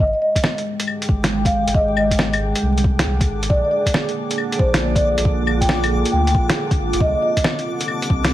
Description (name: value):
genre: future garage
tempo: 137 BPM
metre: 4/4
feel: swing 66% on 16ths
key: unclear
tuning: A4 = 440 Hz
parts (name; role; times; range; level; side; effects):
- marimba with soft mallets; melody; 0.0-7.5 s; C5 to G5; -22 LUFS; equal; digital delay
- dark analog pad; sustained chords; 0.5-8.3 s; Ab3 to G5; -24 LUFS; right 1 dB; chorus, sidechain pumping
- warm sub bass; bass; 0.0-8.3 s; Ab1 to D2; -22 LUFS; equal; sidechain pumping
- backwards swelling texture; texture; 0.9-8.3 s; D3 to D6; -30 LUFS; left 2 dB; built-in reverb
- electronic kick drum; drums; 0.4-8.2 s; none; -19 LUFS; equal; studio ambience
- lo-fi sampler-style drum kit; drums; 0.4-8.3 s; claves, hi-hat, snare drum; -21 LUFS; equal; studio ambience
room: moderate recital hall reverb, RT60 1.4 s, digital ambience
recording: vinyl crackle, lossy compression artefacts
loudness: -16 LUFS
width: side -13 dB against mid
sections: 0.0-8.3 A section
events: none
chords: 0.0 Abmaj7; 3.5 Bb7; 7.0 Cm7